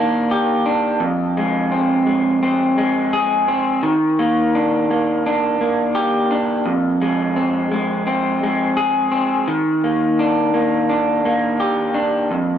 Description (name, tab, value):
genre	indie pop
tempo	85 BPM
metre	4/4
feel	swing 60% on 16ths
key	Eb major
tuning	A4 = 444 Hz
part	electric guitar through a small old amp	solo	0.0-12.6 s	F2 to Ab4	-16 LUFS	equal	lush chorus, vibrato effect, tape echo
room	wet studio ambience, RT60 0.5 s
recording	dark, warm production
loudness	-16 LUFS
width	side -9 dB against mid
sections	0.0-12.6 A section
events	none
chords	0.0 Ebmaj7; 1.0 Fm; 3.8 Ebmaj7; 6.7 Fm; 9.5 Ebmaj7